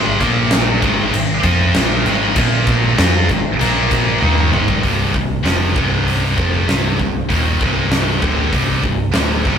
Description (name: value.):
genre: hard rock.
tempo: 97 BPM.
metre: 4/4.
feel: straight.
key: C minor.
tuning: A4 = 442 Hz.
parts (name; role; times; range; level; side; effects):
scooped high-gain guitar; riff; 0.0-9.6 s; C2 to F4; -17 LUFS; equal; distortion.
picked electric bass; bass; 0.0-9.6 s; C1 to F2; -19 LUFS; equal; none.
huge arena drum kit; drums; 0.2-9.6 s; crash cymbal, hi-hat, kick drum, snare drum, toms; -18 LUFS; equal; none.
room: moderate stone room reverb, RT60 1.3 s.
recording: rough rehearsal-room recording.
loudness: -13 LUFS.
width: side -7 dB against mid.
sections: 0.0-4.8 A section; 4.8-9.6 B section.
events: drum fill 4.2-4.8.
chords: 0.2 Bb5; 0.8 Ab5; 2.4 Bb5; 3.0 Ab5; 3.6 Bb5; 4.2 Ab5; 4.8 Cm.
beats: 0.51 1.13 1.75 | 2.36 2.98 3.60 4.21 | 4.83 5.44 6.06 6.68 | 7.29 7.91 8.52 9.14.